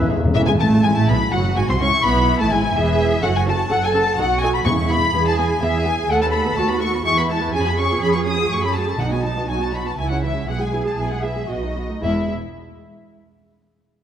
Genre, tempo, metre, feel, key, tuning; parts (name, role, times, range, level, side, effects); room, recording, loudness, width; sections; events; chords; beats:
quick classical-period movement for symphony orchestra; 111-128 BPM; 3/4; rubato; E major; A4 = 439 Hz
muted chamber violin section; melody; 0.0-12.3 s; D#5 to D#6; -23 LUFS; left 4 dB
muted symphonic violin section; second line; 0.0-12.3 s; E4 to D#6; -26 LUFS; left 3 dB
muted chamber viola section; accompaniment; 0.0-12.3 s; E3 to B4; -24 LUFS; right 1 dB
muted chamber cello section; bass; 0.0-12.3 s; E2 to A4; -24 LUFS; right 3 dB
muted chamber double bass section; bass; 0.0-12.3 s; E1 to F#2; -23 LUFS; right 3 dB
timpani; percussion; 0.0-1.0, 4.7-5.3, 9.0-9.7, 12.0-12.3 s; E2 to B2; -24 LUFS; left 1 dB
moderate concert hall reverb, RT60 2.0 s; -17 LUFS; side -9 dB against mid
0.4-12.0 A section; 12.0-13.6 B section
timpani fill 0.0-0.4
0.4 E; 1.3 G#7/F#; 1.8 C#m; 3.2 F#m; 4.2 B7; 4.7 E; 6.1 B7/D#; 7.1 E; 7.5 C#7/E#; 8.5 F#m; 9.0 B; 10.0 C#m; 10.5 E/B; 11.5 B7; 12.0 E
| 0.35 0.84 1.32 | 1.81 2.29 2.76 | 3.25 3.72 4.19 | 4.67 5.14 5.62 | 6.09 6.57 7.05 | 7.53 8.01 8.50 | 8.99 9.48 9.98 | 10.48 10.98 11.49 | 12.03